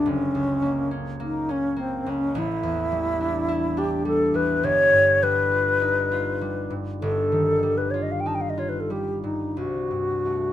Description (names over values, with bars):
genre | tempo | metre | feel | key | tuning
classical, impressionist duo for alto flute and harp | 44-53 BPM | 4/4 | rubato | unclear | A4 = 440 Hz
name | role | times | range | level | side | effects
hollow alto flute | melody | 0.0-10.5 s | C4 to A5 | -22 LUFS | left 1 dB | none
concert harp | accompaniment | 0.0-10.5 s | F#1 to G4 | -27 LUFS | equal | none
room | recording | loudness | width
moderate studio reverb, RT60 0.8 s | minimal, uncompressed stereo recording | -21 LUFS | side -12 dB against mid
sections
0.0-10.5 A section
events
none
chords
0.1 F#; 2.4 A7sus4; 4.6 Gaug7; 9.6 C5